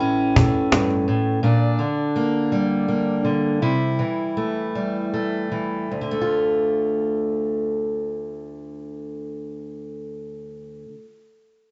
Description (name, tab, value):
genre	acoustic folk duo or small band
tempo	74-84 BPM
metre	3/4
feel	straight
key	D minor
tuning	A4 = 440 Hz
part	fingerpicked steel-string acoustic guitar	accompaniment	0.0-11.1 s	D2 to F4	-24 LUFS	equal	none
part	cajon	percussion	0.4-1.0 s	none	-20 LUFS	equal	none
room	moderate studio reverb, RT60 0.7 s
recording	heard from further back in the room, nothing above 7.7 kHz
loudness	-22 LUFS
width	mono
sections	0.0-5.9 A section; 5.9-10.8 B section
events	slowing down 1.4-5.9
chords	0.0 A; 1.4 Bb6; 3.6 Am7/C; 5.9 Dm